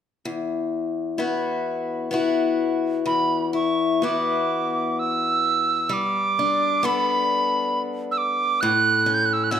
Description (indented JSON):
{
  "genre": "celtic folk, Celtic slow air",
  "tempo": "65 BPM",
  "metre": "3/4",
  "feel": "uneven beats, rubato",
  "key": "E dorian",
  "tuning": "A4 = 439 Hz",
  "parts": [
    { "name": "picked steel-string acoustic guitar", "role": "accompaniment", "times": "0.3-9.6 s", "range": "E2 to A4", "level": "-24 LUFS", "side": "left 4 dB", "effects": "none" },
    { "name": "tin whistle", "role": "melody", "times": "3.1-9.6 s", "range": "B5 to G6", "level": "-21 LUFS", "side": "right 3 dB", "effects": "none" }
  ],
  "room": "light reverb",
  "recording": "minimal, uncompressed stereo recording",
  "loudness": "-20 LUFS",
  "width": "side -9 dB against mid",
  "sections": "0.3-3.0 A section; 3.0-9.6 B section",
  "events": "none",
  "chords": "0.3 Esus2; 5.9 Gadd9; 8.6 A6"
}